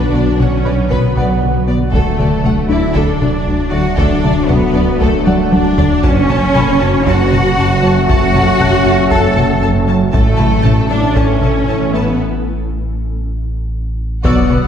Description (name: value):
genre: cinematic, hybrid orchestral and electronic film score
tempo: 117 BPM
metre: 4/4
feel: straight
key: unclear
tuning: A4 = 440 Hz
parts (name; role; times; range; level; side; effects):
- clear symphonic violin section; melody; 0.0-14.7 s; A4 to A5; -26 LUFS; left 3 dB; none
- rich symphonic violin section; second line; 0.0-14.6 s; F#4 to A5; -24 LUFS; left 2 dB; none
- bright symphonic viola section; accompaniment; 0.0-14.6 s; A3 to D5; -23 LUFS; equal; none
- bright trombone section; sustained chords; 0.0-14.4 s; E3 to D4; -23 LUFS; right 2 dB; none
- granular cloud pad; sustained chords; 0.0-14.7 s; D3 to D5; -23 LUFS; equal; none
- mellow French horn section; sustained chords; 0.0-14.7 s; D3 to A4; -22 LUFS; left 4 dB; none
- tight sequenced synth; arpeggios; 0.0-14.7 s; D3 to B4; -25 LUFS; equal; none
- rubbery square bass; riff; 0.0-14.7 s; D2 to B3; -20 LUFS; left 1 dB; none
- rich symphonic cello section; bass; 0.0-14.7 s; A3 to A4; -18 LUFS; equal; none
- sub bass with octave; bass; 0.0-14.7 s; D1 to B1; -21 LUFS; equal; none
- felt-muted upright piano; texture; 0.0-10.2, 14.3-14.7 s; F#4 to F#6; -26 LUFS; right 2 dB; digital delay
- clear symphonic double bass section; bass; 0.1-14.6 s; F#1 to D2; -20 LUFS; right 2 dB; none
- solo taiko drums; drums; 0.1-14.7 s; none; -18 LUFS; equal; none
- impact; sound effects; 14.2-14.7 s; none; -18 LUFS; equal; none
room: wet scoring stage reverb, RT60 1.8 s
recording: heard from further back in the room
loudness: -11 LUFS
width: side -8 dB against mid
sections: 0.0-14.2 A section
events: drum fill 5.3-6.0; break 12.2-14.2; impact 14.2-14.7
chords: 0.0 Bm; 1.9 D; 6.0 F#m; 10.1 A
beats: 0.40 0.91 1.42 | 1.94 2.45 2.96 3.47 | 3.99 4.50 5.01 5.53 | 6.04 6.55 7.06 7.58 | 8.09 8.60 9.12 9.63 | 10.14 10.65 11.17 11.68 | 12.19 12.71 13.22 13.73 | 14.24